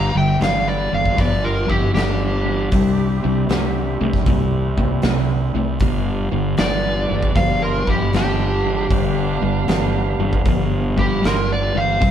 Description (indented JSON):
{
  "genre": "blues rock power trio and southern rock",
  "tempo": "78 BPM",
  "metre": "4/4",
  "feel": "swing 66% on 8ths",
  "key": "G mixolydian",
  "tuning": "A4 = 437 Hz",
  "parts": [
    { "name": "overdriven slide guitar", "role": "melody", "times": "0.0-12.1 s", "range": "G4 to Bb5", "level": "-23 LUFS", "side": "right 1 dB", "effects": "none" },
    { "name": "nasal lead guitar with a parked wah", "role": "second line", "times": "0.0-12.1 s", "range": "D4 to F5", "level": "-30 LUFS", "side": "right 4 dB", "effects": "overdrive" },
    { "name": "overdriven tonewheel organ", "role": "sustained chords", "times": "0.0-12.1 s", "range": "G3 to F5", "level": "-30 LUFS", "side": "right 5 dB", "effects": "none" },
    { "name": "overdriven semi-hollow guitar", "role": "riff", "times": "0.0-12.1 s", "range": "G2 to Bb3", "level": "-22 LUFS", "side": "left 1 dB", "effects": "none" },
    { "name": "fuzz fingered electric bass", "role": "bass", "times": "0.0-12.1 s", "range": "G1 to C2", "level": "-22 LUFS", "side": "equal", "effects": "overdrive" },
    { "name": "big rock drum kit", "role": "drums", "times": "0.4-12.1 s", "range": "hi-hat, kick drum, snare drum", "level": "-22 LUFS", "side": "equal", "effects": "none" }
  ],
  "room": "moderate stone room reverb, RT60 1.2 s",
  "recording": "band playing live in one room",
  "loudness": "-16 LUFS",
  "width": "side -9 dB against mid",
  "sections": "0.0-12.1 A section",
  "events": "none",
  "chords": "0.0 G7; 2.7 C7; 5.8 G7"
}